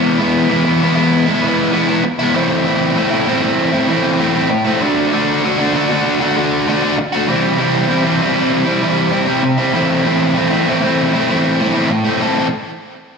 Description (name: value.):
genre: rock.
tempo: 97 BPM.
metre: 4/4.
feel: straight.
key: A dorian.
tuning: A4 = 440 Hz.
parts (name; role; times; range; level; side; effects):
biting overdriven guitar; solo; 0.0-12.5 s; A2 to A4; -13 LUFS; equal; spring reverb, slapback echo, digital delay.
room: wet club reverb, RT60 0.5 s.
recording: live gig heard through the venue's PA, club reverb.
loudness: -13 LUFS.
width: side -5 dB against mid.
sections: 0.0-12.2 A section.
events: none.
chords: 0.0 E; 2.4 Am; 4.8 D; 7.3 C; 9.7 Am.